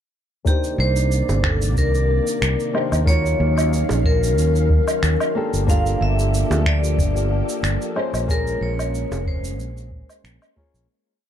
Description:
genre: sunset chillout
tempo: 92 BPM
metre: 4/4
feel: swing 54% on 16ths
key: unclear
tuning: A4 = 439 Hz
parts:
  - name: flamenco guitar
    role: accompaniment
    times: 0.4-10.9 s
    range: Bb3 to Db5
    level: -28 LUFS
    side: moving between left 6 dB and right 5 dB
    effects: auto-pan, low-pass filter, ping-pong delay
  - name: vibraphone with hard mallets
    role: melody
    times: 0.5-10.2 s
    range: G4 to F5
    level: -25 LUFS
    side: left 2 dB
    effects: ping-pong delay
  - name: soft string machine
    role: sustained chords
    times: 0.5-10.9 s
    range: C3 to F5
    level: -28 LUFS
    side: equal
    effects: ensemble chorus
  - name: electronic kick drum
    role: drums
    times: 0.5-10.7 s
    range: none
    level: -21 LUFS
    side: equal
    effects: none
  - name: electronic shaker, finger snaps and woodblock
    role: drums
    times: 0.5-10.9 s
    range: none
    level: -27 LUFS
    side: equal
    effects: none
  - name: fretless electric bass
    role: bass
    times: 0.8-10.9 s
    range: F1 to Eb2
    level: -20 LUFS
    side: equal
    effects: none
  - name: bongos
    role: percussion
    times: 1.3-9.2 s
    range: none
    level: -29 LUFS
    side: right 2 dB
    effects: none
room: small room ambience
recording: dark, warm production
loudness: -17 LUFS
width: side -10 dB against mid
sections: 0.5-10.9 groove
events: filter sweep on nylon-string guitar 0.5-10.9; fade-out 7.4-10.9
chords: 0.5 Cm9; 3.1 Ebm9; 5.4 Gm9; 8.0 Bbm9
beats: | 0.46 1.11 1.77 2.42 | 3.07 3.72 4.38 5.03 | 5.68 6.33 6.99 7.64 | 8.29 8.94 9.59 10.25

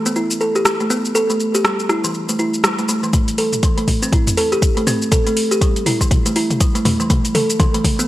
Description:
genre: afro house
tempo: 121 BPM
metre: 4/4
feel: swing 59% on 16ths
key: A minor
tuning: A4 = 440 Hz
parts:
  - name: kalimba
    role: arpeggios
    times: 0.1-8.1 s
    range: E3 to A4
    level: -18 LUFS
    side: equal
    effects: sidechain pumping, low-pass filter, analog delay
  - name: deep house drum kit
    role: drums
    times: 0.1-8.1 s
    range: hi-hat, rim click, shaker, toms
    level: -20 LUFS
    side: left 1 dB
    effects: none
  - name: electronic kick drum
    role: drums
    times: 3.1-8.0 s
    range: none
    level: -16 LUFS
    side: equal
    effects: none
room: moderate lush hall reverb, RT60 2.4 s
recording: dry, gritty hardware recording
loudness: -14 LUFS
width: side -15 dB against mid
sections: 0.0-8.1 A section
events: build-up 0.0-8.1; drum fill 3.1-8.1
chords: none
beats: 0.16 0.66 | 1.15 1.65 2.14 2.64 | 3.13 3.63 4.13 4.62 | 5.12 5.61 6.11 6.61 | 7.10 7.60

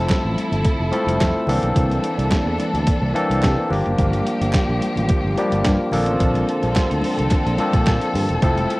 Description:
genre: disco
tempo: 108 BPM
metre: 4/4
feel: straight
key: unclear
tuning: A4 = 440 Hz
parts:
  - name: barky tine electric piano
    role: accompaniment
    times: 0.0-8.8 s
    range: E3 to A4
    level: -22 LUFS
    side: left 1 dB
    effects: overdrive
  - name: clear studio string section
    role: sustained chords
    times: 0.0-8.8 s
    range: D3 to A4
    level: -26 LUFS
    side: equal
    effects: none
  - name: fingered electric bass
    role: bass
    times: 0.0-8.6 s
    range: E1 to C3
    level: -22 LUFS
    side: equal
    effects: none
  - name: boom bap sampler-style drum kit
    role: drums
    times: 0.1-8.8 s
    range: hi-hat, kick drum, snare drum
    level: -21 LUFS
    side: equal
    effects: overdrive, cassette tape
  - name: congas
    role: percussion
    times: 0.1-8.7 s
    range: none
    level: -30 LUFS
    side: left 2 dB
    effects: none
  - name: group handclap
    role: percussion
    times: 0.1-8.0 s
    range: none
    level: -33 LUFS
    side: right 3 dB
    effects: none
room: light reverb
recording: home recording on cassette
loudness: -17 LUFS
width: side -21 dB against mid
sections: 0.0-8.8 A section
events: none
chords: 0.0 Fmaj7; 1.5 C13; 3.7 Gm7; 5.9 Bbmaj9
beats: 0.10 0.65 1.21 | 1.76 2.32 2.87 3.43 | 3.98 4.54 5.09 5.65 | 6.20 6.76 7.31 7.87 | 8.42

